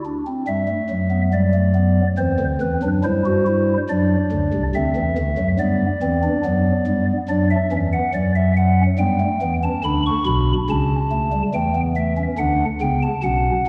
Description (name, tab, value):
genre	classical, baroque-style 3-part fugue for pipe organ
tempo	70 BPM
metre	4/4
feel	straight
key	G major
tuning	A4 = 440 Hz
part	chamber organ, stopped flute	solo	0.1-13.7 s	B1 to C#6	-20 LUFS	equal	none
room	wet concert hall reverb, RT60 2.0 s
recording	heard from further back in the room, nothing above 11.0 kHz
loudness	-20 LUFS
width	mono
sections	0.5-13.7 A section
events	none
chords	0.5 G; 2.2 C; 3.9 D7; 5.6 G; 7.3 D; 9.0 G; 10.7 A7/C#; 12.4 D